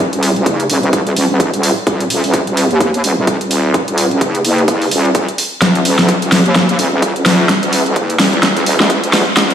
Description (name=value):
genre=bass house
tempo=128 BPM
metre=4/4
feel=swing 58% on 16ths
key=Eb minor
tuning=A4 = 437 Hz
part: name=wobble bass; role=bass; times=0.0-9.5 s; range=Eb1 to Eb2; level=-14 LUFS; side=equal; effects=chorus, overdrive, sidechain pumping, high-pass filter
part: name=big-room dance drum kit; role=drums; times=0.1-9.5 s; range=hi-hat, snare drum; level=-14 LUFS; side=equal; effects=overdrive, studio reverb
part: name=electronic kick drum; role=drums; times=0.5-9.5 s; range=none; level=-17 LUFS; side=equal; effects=high-pass filter on kick, studio reverb, high-pass filter on room
room=moderate lush hall reverb, RT60 2.2 s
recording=played on a big sound system in a bare room, stone room reverb, high-pass filter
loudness=-11 LUFS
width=side -9 dB against mid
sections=0.0-9.5 A section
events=build-up 0.0-9.5; drum fill 5.6-9.5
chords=none